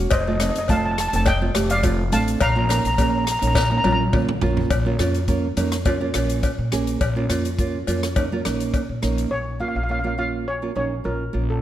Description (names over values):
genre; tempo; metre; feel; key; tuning
calypso; 104 BPM; 4/4; straight; unclear; A4 = 440 Hz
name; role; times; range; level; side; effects
nylon-string guitar; accompaniment; 0.0-11.6 s; A3 to Ab4; -24 LUFS; right 4 dB; none
upright bass; bass; 0.0-11.6 s; E1 to Bb2; -24 LUFS; equal; none
steel pan; melody; 0.1-4.0, 9.3-11.6 s; A4 to Bb5; -24 LUFS; equal; none
swinging big-band drum kit; drums; 0.1-9.3 s; hi-hat, kick drum, rim click, snare drum, toms; -25 LUFS; equal; none
cowbell; percussion; 0.1-8.9 s; none; -29 LUFS; left 6 dB; none
room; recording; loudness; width
light reverb; none; -19 LUFS; side -12 dB against mid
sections
0.0-4.7 A section; 4.7-9.3 B section; 9.3-11.6 C section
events
drum fill 3.6-4.7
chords
0.1 F7; 2.4 Bbm